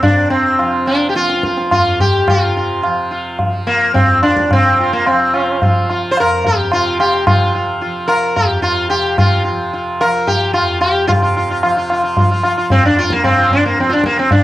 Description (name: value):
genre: indian classical, Hindustani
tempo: 109 BPM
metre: 4/4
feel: straight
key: F raga durga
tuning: A4 = 441 Hz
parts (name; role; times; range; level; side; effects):
- sitar; melody; 0.0-14.4 s; Bb3 to C5; -14 LUFS; equal; cassette tape
- tanpura; drone; 0.0-14.4 s; F2 to F3; -25 LUFS; right 1 dB; cassette tape
- tabla; percussion; 0.0-14.4 s; none; -16 LUFS; equal; none
room: light reverb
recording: home recording on cassette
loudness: -12 LUFS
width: side -15 dB against mid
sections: 0.0-11.1 A section; 11.1-14.4 B section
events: speeding up 0.0-14.4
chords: none